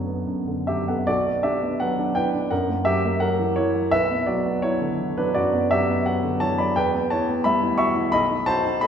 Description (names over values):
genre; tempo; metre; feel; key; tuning
classical, romantic character piece for solo piano; 85 BPM; 4/4; rubato; B minor; A4 = 440 Hz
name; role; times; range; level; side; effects
warm baby grand piano; solo; 0.0-8.9 s; B1 to C#6; -20 LUFS; equal; none
room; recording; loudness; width
wet scoring stage reverb, RT60 1.6 s; heard from further back in the room; -20 LUFS; side -8 dB against mid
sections
0.0-1.1 A section; 1.1-8.9 B section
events
none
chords
0.0 Bm; 2.5 F#7; 3.9 Bm; 6.8 Em; 8.1 B7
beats
0.27 | 1.07 1.80 2.51 3.20 | 3.92 4.63 5.34 6.05 | 6.75 7.45 8.13 8.83